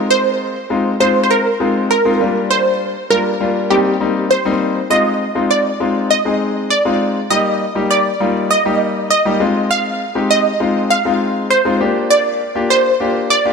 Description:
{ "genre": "pop", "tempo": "100 BPM", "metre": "4/4", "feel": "straight", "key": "F dorian", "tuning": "A4 = 440 Hz", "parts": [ { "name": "wide unison pluck", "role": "melody", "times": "0.0-13.5 s", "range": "G4 to F5", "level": "-15 LUFS", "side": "right 2 dB", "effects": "phaser, ping-pong delay" }, { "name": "clear concert grand piano", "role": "accompaniment", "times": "0.0-13.5 s", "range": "G3 to Ab4", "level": "-17 LUFS", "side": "left 3 dB", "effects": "none" } ], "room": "moderate lush hall reverb, RT60 2.8 s", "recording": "dark, warm production", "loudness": "-13 LUFS", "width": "side -5 dB against mid", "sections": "0.0-4.9 A section; 4.9-13.5 B section", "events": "build-up 4.9-13.5", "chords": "0.0 Fm7; 2.2 Gm7; 3.7 Eb6; 4.9 Fm7; 7.3 Eb; 9.4 Fm7; 11.8 Gm7", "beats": "| 0.10 0.70 1.30 1.90 | 2.50 3.10 3.70 4.30 | 4.90 5.50 6.10 6.70 | 7.30 7.90 8.50 9.10 | 9.70 10.30 10.90 11.50 | 12.10 12.70 13.30" }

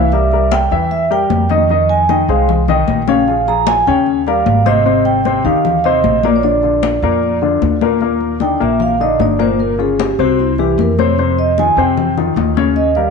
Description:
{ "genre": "Afro-Cuban jazz", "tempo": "152 BPM", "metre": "4/4", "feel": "straight", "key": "Eb major", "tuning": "A4 = 440 Hz", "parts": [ { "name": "warm baby grand piano", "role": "accompaniment", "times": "0.0-13.1 s", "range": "Bb2 to E5", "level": "-16 LUFS", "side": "left 9 dB", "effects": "none" }, { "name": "upright bass", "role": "bass", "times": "0.0-13.1 s", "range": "G1 to F2", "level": "-19 LUFS", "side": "right 2 dB", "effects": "none" }, { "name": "vibraphone with soft mallets", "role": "melody", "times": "0.1-13.1 s", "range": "E4 to Bb5", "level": "-16 LUFS", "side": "right 6 dB", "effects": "none" }, { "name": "congas", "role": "percussion", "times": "0.1-13.1 s", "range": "none", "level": "-20 LUFS", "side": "left 10 dB", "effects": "none" } ], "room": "moderate echo chamber reverb, RT60 1.4 s, small room ambience", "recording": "1960s-style stereo with parts hard left and right, nothing above 10.5 kHz", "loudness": "-11 LUFS", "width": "side -5 dB against mid", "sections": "0.0-8.0 A section; 8.0-13.1 B section", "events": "vibraphone solo 8.0-13.1", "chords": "0.1 C7; 1.7 Fm9; 3.3 Bbm7; 4.1 Eb9; 4.9 Abmaj7; 6.4 Bb; 8.0 Ebmaj7; 9.6 Gm7b5; 10.4 C; 11.2 Fsus2", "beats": "| 0.12 0.52 0.91 1.31 | 1.70 2.10 2.49 2.89 | 3.28 3.67 4.07 4.46 | 4.86 5.25 5.65 6.04 | 6.44 6.83 7.23 7.62 | 8.02 8.41 8.81 9.20 | 9.60 9.99 10.39 10.79 | 11.18 11.58 11.97 12.37 | 12.77" }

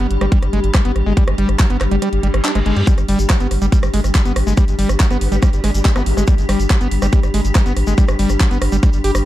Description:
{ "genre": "psychedelic trance", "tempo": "141 BPM", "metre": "4/4", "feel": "straight", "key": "G major", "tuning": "A4 = 441 Hz", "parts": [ { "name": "swarming drone", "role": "sustained chords", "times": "0.0-9.3 s", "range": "G3 to G4", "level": "-25 LUFS", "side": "left 2 dB", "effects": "built-in reverb, sidechain pumping" }, { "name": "screaming distorted acid line", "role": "riff", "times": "0.0-9.1 s", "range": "F#3 to G4", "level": "-22 LUFS", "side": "moving between left 3 dB and right 4 dB", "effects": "distortion, chorus, auto-pan, sidechain pumping, ping-pong delay" }, { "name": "round analog bass", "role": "bass", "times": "0.0-9.2 s", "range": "G1 to G2", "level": "-17 LUFS", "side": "equal", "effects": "none" }, { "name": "garage drum kit", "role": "drums", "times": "0.0-9.2 s", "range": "handclaps, hi-hat, rim click", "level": "-24 LUFS", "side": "right 1 dB", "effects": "overdrive" }, { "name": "warbly tape-like pad", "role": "texture", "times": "0.0-9.3 s", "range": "G3 to C6", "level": "-30 LUFS", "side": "equal", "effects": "chorus, built-in reverb, sidechain pumping" }, { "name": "electronic kick drum", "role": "drums", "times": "0.3-8.9 s", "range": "none", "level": "-13 LUFS", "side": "equal", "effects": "overdrive" }, { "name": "reverse cymbal and zap", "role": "sound effects", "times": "2.2-2.9, 6.0-6.1 s", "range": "none", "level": "-30 LUFS", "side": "right 1 dB", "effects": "none" }, { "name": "maracas", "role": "percussion", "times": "2.9-9.2 s", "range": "none", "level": "-33 LUFS", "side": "left 2 dB", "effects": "none" }, { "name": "formant-sweep wobble bass", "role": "second line", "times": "5.1-6.1 s", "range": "G3 to B3", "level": "-32 LUFS", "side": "right 2 dB", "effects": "lush chorus, sidechain pumping, high-pass filter, ping-pong delay" } ], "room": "digital ambience", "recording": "dark, warm production", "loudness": "-13 LUFS", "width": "side -14 dB against mid", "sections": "0.0-9.3 A section", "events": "fade-in on ambient pad 0.0-9.3; kick drops out 2.0-2.9; reverse cymbal 2.2-2.9", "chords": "0.0 G5", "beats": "0.32 0.74 | 1.17 1.59 2.02 2.45 | 2.87 3.30 3.72 4.15 | 4.57 5.00 5.42 5.85 | 6.28 6.70 7.13 7.55 | 7.98 8.40 8.83" }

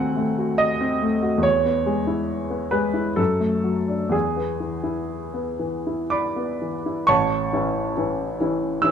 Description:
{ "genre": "classical, romantic character piece for solo piano", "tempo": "57-71 BPM", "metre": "3/4", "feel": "rubato", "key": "A major", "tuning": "A4 = 440 Hz", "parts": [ { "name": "warm baby grand piano", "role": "solo", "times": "0.0-8.9 s", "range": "A1 to E6", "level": "-20 LUFS", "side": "equal", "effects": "none" } ], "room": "moderate large studio reverb, RT60 0.9 s", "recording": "dark, warm production", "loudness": "-20 LUFS", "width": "side -7 dB against mid", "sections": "0.0-7.1 A section; 7.1-8.9 A section", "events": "none", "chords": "0.0 D#dim7; 1.4 E; 3.2 D/F#; 4.1 E; 7.1 A", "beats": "0.60 | 1.45 2.30 3.19 | 4.13 5.10 6.12 | 7.07 7.95 8.82" }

